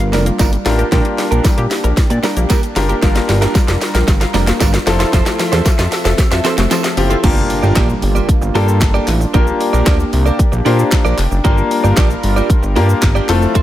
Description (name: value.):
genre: dance-pop.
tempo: 114 BPM.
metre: 4/4.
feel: straight.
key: G dorian.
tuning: A4 = 442 Hz.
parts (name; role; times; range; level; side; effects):
warm analog pad; sustained chords; 0.0-13.6 s; F3 to E5; -22 LUFS; equal; chorus, sidechain pumping, low-pass filter.
hollow square pluck; arpeggios; 0.0-7.2 s; F3 to F5; -23 LUFS; left 5 dB; chorus, sidechain pumping, low-pass filter, digital delay.
direct-recorded clean electric guitar; riff; 0.0-13.6 s; Bb3 to D5; -22 LUFS; right 7 dB; analog chorus, low-pass filter.
fat analog bass; bass; 0.0-13.6 s; F1 to Bb2; -15 LUFS; equal; sidechain pumping.
house drum kit; drums; 0.0-13.6 s; crash cymbal, handclaps, hi-hat, kick drum, shaker, snare drum; -15 LUFS; equal; none.
tambourine; percussion; 0.1-7.1 s; none; -32 LUFS; right 5 dB; none.
clear grand piano; accompaniment; 0.7-13.6 s; A3 to C5; -18 LUFS; left 3 dB; sidechain pumping, low-pass filter.
impact; sound effects; 7.2-9.3 s; none; -26 LUFS; equal; none.
room: little or no reverb.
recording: none.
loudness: -11 LUFS.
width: side -13 dB against mid.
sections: 0.0-7.2 A section; 7.2-13.6 B section.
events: build-up 0.0-7.2; drum fill 0.0-7.2; drop 7.2-13.6; impact 7.2-9.3.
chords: 0.0 Gm7; 0.9 Bb6; 3.0 Gm7; 4.9 Fmaj7; 7.2 Gm7; 9.3 Bb6; 11.4 Gm7.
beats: 0.39 | 0.92 1.45 1.97 2.50 | 3.03 3.55 4.08 4.61 | 5.13 5.66 6.18 6.71 | 7.24 7.76 8.29 8.81 | 9.34 9.87 10.39 10.92 | 11.45 11.97 12.50 13.03 | 13.55.